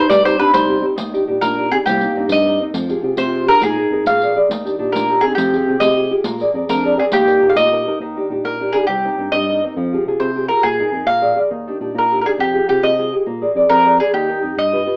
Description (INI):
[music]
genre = italian folk, Italian serenade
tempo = 137 BPM (dotted quarters)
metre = 6/8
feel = straight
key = Eb major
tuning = A4 = 439 Hz
[part]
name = mandolin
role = melody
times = 0.0-15.0 s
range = G4 to F5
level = -18 LUFS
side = equal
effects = none
[part]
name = dark clarinet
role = second line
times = 0.0-8.0 s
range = Bb3 to Ab4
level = -24 LUFS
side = equal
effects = none
[part]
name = nylon-string guitar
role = accompaniment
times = 0.0-15.0 s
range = C3 to D5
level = -22 LUFS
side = equal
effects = none
[part]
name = tine electric piano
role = bass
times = 0.1-14.9 s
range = C2 to C3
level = -27 LUFS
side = equal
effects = none
[part]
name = riq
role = percussion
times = 0.1-7.7 s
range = none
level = -30 LUFS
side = equal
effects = none
[sound]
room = moderate large studio reverb, RT60 0.9 s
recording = band playing live in one room, AM radio sound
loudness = -17 LUFS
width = mono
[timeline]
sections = 1.0-8.0 A section; 8.0-15.0 A section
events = none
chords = 0.1 Cm; 1.0 Ebmaj7; 1.9 Cm7; 2.7 Fmadd9; 3.6 Bb7sus4; 4.1 Bb7; 4.5 Ebmaj7; 5.4 Fmadd9; 6.3 Bb7; 7.1 Eb; 8.0 Ebmaj7; 8.9 Cm7; 9.8 Fmadd9; 10.6 Bb7sus4; 11.1 Bb7; 11.5 Ebmaj7; 12.4 Fmadd9; 13.3 Bb7; 14.1 Eb